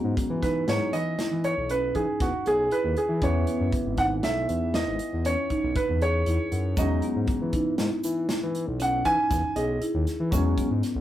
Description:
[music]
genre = progressive instrumental, band music in an uneven meter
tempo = 118 BPM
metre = 7/4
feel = straight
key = E major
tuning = A4 = 441 Hz
[part]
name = warm grand piano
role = accompaniment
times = 0.0-10.7 s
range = E3 to G#5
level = -27 LUFS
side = right 2 dB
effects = none
[part]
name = marimba with soft mallets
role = arpeggios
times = 0.0-11.0 s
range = B3 to G#4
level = -29 LUFS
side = equal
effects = none
[part]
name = smooth synth bass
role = bass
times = 0.0-11.0 s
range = G#1 to E3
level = -28 LUFS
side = left 1 dB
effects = none
[part]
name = natural country drum kit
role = drums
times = 0.2-10.9 s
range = hi-hat, kick drum, snare drum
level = -31 LUFS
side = equal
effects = none
[part]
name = egg shaker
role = percussion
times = 6.8-10.7 s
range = none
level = -43 LUFS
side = right 3 dB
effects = none
[sound]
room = moderate small room reverb, RT60 0.5 s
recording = rough rehearsal-room recording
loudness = -23 LUFS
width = side -12 dB against mid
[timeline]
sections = 0.0-11.0 A section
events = grand piano solo 0.0-11.0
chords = 0.0 Emaj7; 3.2 C#m9; 6.8 E69

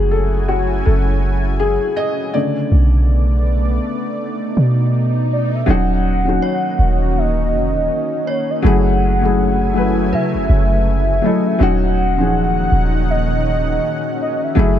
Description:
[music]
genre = contemporary R&B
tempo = 81 BPM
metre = 4/4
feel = swing 58% on 16ths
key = Eb minor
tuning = A4 = 440 Hz
[part]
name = felt-muted upright piano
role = accompaniment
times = 0.0-14.8 s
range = C#3 to Eb5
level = -20 LUFS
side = left 2 dB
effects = none
[part]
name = lush unison pad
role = sustained chords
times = 0.0-14.8 s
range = Bb2 to Ab5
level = -23 LUFS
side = equal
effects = chorus
[part]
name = warm 808-style bass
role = bass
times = 0.0-14.8 s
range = Eb1 to Db3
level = -16 LUFS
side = equal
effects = none
[part]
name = swell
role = sound effects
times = 4.2-5.7 s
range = none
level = -30 LUFS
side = right 3 dB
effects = none
[part]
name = warm velvety synth lead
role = melody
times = 5.3-14.8 s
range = Db5 to Gb5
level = -21 LUFS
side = equal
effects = chorus, digital delay
[part]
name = synth chime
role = texture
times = 6.4-11.9 s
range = Cb5 to Db5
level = -31 LUFS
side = right 2 dB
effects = ensemble chorus, digital delay
[sound]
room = digital ambience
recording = dark, warm production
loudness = -14 LUFS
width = side -10 dB against mid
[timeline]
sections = 0.0-5.7 A section; 5.7-14.8 B section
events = felt piano solo 0.0-5.7; swell 4.2-5.7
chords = 0.0 Gbm9; 2.3 Bm9; 5.7 Ebm7; 8.6 Gbm9; 11.6 Ebm9

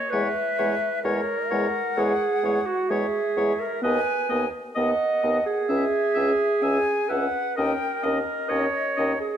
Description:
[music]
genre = classical, slow romantic movement for wind quintet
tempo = 64 BPM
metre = 4/4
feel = rubato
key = unclear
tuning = A4 = 440 Hz
[part]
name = bright silver concert flute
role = melody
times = 0.0-9.4 s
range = C#5 to G#5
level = -30 LUFS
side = left 8 dB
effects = none
[part]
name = clear clarinet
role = accompaniment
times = 0.0-9.4 s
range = F#4 to D#5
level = -24 LUFS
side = right 4 dB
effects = none
[part]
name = bright oboe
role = second line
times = 0.1-9.1 s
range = C#5 to E5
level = -33 LUFS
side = left 5 dB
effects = none
[part]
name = mellow French horn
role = accompaniment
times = 0.1-9.1 s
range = G#3 to C#4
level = -32 LUFS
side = left 1 dB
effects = none
[part]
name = warm bassoon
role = bass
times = 0.1-9.1 s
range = C#2 to E2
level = -30 LUFS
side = equal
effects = none
[sound]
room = moderate recital hall reverb, RT60 1.4 s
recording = dark, warm production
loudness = -22 LUFS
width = side -9 dB against mid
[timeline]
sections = 0.0-9.4 A section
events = none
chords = 0.1 E6; 3.8 B/D#; 5.7 C#m; 7.6 D#5

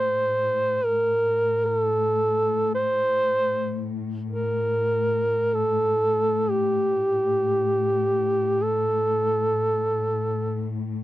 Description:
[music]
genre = caucasian folk, Caucasian lament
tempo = free time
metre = none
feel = none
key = A phrygian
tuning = A4 = 439 Hz
[part]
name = dark duduk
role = melody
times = 0.0-10.7 s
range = G4 to C5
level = -21 LUFS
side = right 1 dB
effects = none
[part]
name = dark symphonic string section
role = drone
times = 0.0-11.0 s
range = A2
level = -30 LUFS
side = left 4 dB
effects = none
[sound]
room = light reverb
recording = dry, close 1970s-style studio recording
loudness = -21 LUFS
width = side -15 dB against mid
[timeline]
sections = 0.0-11.0 A section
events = none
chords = none

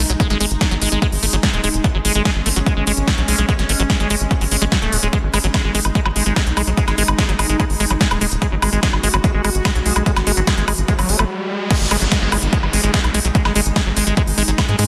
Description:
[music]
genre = psychedelic trance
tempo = 146 BPM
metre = 4/4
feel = straight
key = unclear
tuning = A4 = 440 Hz
[part]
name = evolving wavetable pad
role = sustained chords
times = 0.0-14.9 s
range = G#3 to F#4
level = -30 LUFS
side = equal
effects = chorus, built-in reverb, sidechain pumping
[part]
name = liquid acid bass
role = riff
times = 0.0-14.8 s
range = F#3 to A3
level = -24 LUFS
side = equal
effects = chorus, sidechain pumping, dub echo
[part]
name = tight sequencer bass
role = bass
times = 0.0-14.8 s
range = D#1 to G#2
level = -22 LUFS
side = equal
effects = none
[part]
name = big-room dance drum kit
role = drums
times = 0.1-14.9 s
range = crash cymbal, hi-hat, snare drum, woodblock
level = -23 LUFS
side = equal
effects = overdrive
[part]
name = electronic kick drum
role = drums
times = 0.2-14.7 s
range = none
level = -21 LUFS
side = equal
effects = overdrive
[part]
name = riser and downlifter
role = sound effects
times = 10.1-14.9 s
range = none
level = -30 LUFS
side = equal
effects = none
[sound]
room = light reverb, digital ambience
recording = dense, heavily limited modern master, lossy compression artefacts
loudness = -17 LUFS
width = mono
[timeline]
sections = 0.0-11.7 A section; 11.7-14.9 B section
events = riser 10.1-11.7; stop 11.3-11.7; drop 11.7-14.9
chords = 0.0 G#5

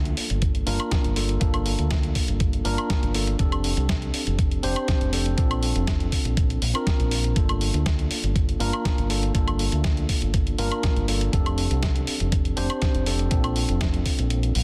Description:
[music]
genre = nu-disco, nu disco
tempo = 121 BPM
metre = 4/4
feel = straight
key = G minor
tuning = A4 = 439 Hz
[part]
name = tine electric piano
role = accompaniment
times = 0.0-14.5 s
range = Bb3 to C5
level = -31 LUFS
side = equal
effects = sidechain pumping, delay
[part]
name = fingered electric bass with an envelope filter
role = bass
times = 0.0-14.6 s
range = F1 to D2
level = -28 LUFS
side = equal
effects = sidechain pumping
[part]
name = dusty soul sampler-style drum kit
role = drums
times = 0.1-14.6 s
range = hi-hat, snare drum, woodblock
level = -32 LUFS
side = equal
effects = none
[part]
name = electronic kick drum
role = drums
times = 0.4-14.2 s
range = none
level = -27 LUFS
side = equal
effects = none
[sound]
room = light reverb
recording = dense, heavily limited modern master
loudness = -24 LUFS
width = mono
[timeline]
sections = 0.0-14.6 A section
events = kick drops out 14.3-14.6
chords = 0.0 Gm9; 3.4 F69; 5.4 Bbmaj7; 7.4 Gm9; 11.3 F69; 13.3 Bbmaj7

